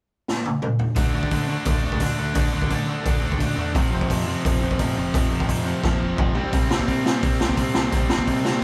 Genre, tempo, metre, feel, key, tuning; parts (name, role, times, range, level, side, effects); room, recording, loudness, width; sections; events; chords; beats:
punk rock; 172 BPM; 4/4; straight; A4 = 441 Hz
raw garage drum kit; drums; 0.3-8.5 s; hi-hat, kick drum, snare drum, toms; -25 LUFS; equal
overdriven semi-hollow guitar; riff; 1.0-8.6 s; F2 to D4; -29 LUFS; equal
tight distorted guitar; riff; 1.0-8.6 s; F2 to D4; -30 LUFS; equal; distortion
growling picked electric bass; bass; 1.0-8.6 s; F1 to D3; -32 LUFS; equal
light reverb; band playing live in one room; -22 LUFS; mono
1.0-8.6 A section
drum fill 0.3-1.0, 5.8-6.5
0.0 N.C.; 1.0 D5; 3.7 F5; 6.4 C5
0.27 0.61 | 0.96 1.31 1.66 2.01 | 2.35 2.70 3.05 3.40 | 3.75 4.09 4.44 4.79 | 5.14 5.49 5.83 6.18 | 6.53 6.88 7.23 7.58 | 7.92 8.27 8.62